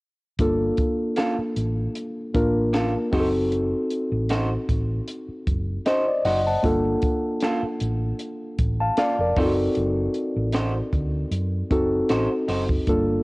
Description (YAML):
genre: lush 1970s-style soul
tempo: 77 BPM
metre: 4/4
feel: swing 54% on 16ths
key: G minor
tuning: A4 = 441 Hz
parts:
  - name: mellow reed electric piano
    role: accompaniment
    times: 0.4-13.2 s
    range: Bb3 to A5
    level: -23 LUFS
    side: equal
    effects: cassette tape
  - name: hollow-body short-scale fingered electric bass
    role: bass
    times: 0.4-13.2 s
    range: F1 to F#2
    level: -26 LUFS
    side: equal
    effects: none
  - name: compact cocktail drum kit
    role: drums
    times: 0.4-13.1 s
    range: hi-hat, kick drum, snare drum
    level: -26 LUFS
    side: equal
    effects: cassette tape
  - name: electric guitar through a small old amp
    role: riff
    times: 1.2-12.6 s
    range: Bb3 to C5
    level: -29 LUFS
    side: right 2 dB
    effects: cassette tape
room: light reverb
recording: home recording on cassette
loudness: -21 LUFS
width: side -23 dB against mid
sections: 0.4-13.2 A section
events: none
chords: 0.4 Gm9 (rootless); 3.1 F#dim7; 6.6 Gm9 (rootless); 9.4 D7b9/F#